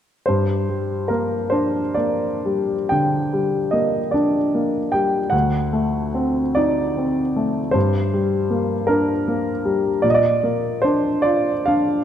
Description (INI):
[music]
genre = classical, romantic nocturne for solo piano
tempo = 41-53 BPM (dotted quarters)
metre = 12/8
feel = rubato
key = G minor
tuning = A4 = 440 Hz
[part]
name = warm grand piano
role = solo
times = 0.3-12.0 s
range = D2 to G5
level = -18 LUFS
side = equal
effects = none
[sound]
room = moderate recital hall reverb, RT60 1.8 s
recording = none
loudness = -18 LUFS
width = side -9 dB against mid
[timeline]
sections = 0.3-12.0 A section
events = none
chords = 0.3 Gm; 5.3 D7b9; 7.8 Gm; 10.0 Bb